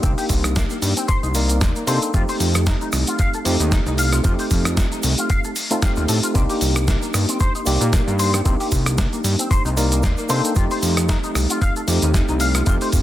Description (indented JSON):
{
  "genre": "nu-disco, nu disco",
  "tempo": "114 BPM",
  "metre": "4/4",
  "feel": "swing 56% on 16ths",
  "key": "C dorian",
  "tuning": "A4 = 439 Hz",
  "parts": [
    { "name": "tine electric piano", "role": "accompaniment", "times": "0.0-13.0 s", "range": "A3 to D5", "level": "-24 LUFS", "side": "equal", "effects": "medium tremolo, sidechain pumping, analog delay" },
    { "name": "electric guitar with an envelope filter", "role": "riff", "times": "0.0-12.9 s", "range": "Bb3 to F5", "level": "-27 LUFS", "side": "left 4 dB", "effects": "ensemble chorus, analog delay" },
    { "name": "fat analog bass", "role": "bass", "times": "0.0-13.0 s", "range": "C2 to C3", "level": "-20 LUFS", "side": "equal", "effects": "none" },
    { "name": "dusty soul sampler-style drum kit", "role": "drums", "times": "0.0-13.0 s", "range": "cabasa, hi-hat, rim click, snare drum", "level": "-25 LUFS", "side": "equal", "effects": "none" },
    { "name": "electronic kick drum", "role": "drums", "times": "0.0-13.0 s", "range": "none", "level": "-20 LUFS", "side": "equal", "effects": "none" },
    { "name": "egg shaker", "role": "percussion", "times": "0.0-13.0 s", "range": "none", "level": "-32 LUFS", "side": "right 5 dB", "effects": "none" }
  ],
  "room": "light reverb, digital ambience",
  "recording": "dense, heavily limited modern master",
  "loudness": "-17 LUFS",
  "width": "side -13 dB against mid",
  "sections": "0.0-13.0 A section",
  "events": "none",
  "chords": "0.0 Cm7; 2.1 F7; 6.4 Cm7; 10.6 F7"
}